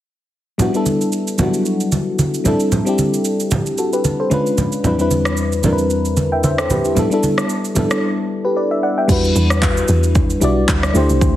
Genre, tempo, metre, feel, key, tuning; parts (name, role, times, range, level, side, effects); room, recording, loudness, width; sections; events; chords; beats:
amapiano; 113 BPM; 4/4; swing 55% on 16ths; E minor; A4 = 440 Hz
mellow FM electric piano; accompaniment; 0.6-11.4 s; E2 to G5; -17 LUFS; left 1 dB; chorus
deep house drum kit; drums; 0.6-11.4 s; crash cymbal, handclaps, kick drum, rim click, shaker; -21 LUFS; right 1 dB
congas; percussion; 0.6-7.9 s; -19 LUFS; right 2 dB
deep log drum bass; bass; 9.1-11.4 s; B1 to E2; -16 LUFS; equal
light reverb; heavily compressed radio sound; -14 LUFS; side -13 dB against mid
0.6-9.1 A section; 9.1-11.4 B section
drop 9.1-11.4
0.6 Em9; 2.5 D9sus4; 4.3 Bdim7; 4.8 Cmaj9/E; 7.0 G69; 9.1 Em9
| 0.59 1.13 1.66 2.19 | 2.72 3.25 3.78 4.31 | 4.84 5.37 5.90 6.43 | 6.97 7.50 8.03 8.56 | 9.09 9.62 10.15 10.68 | 11.21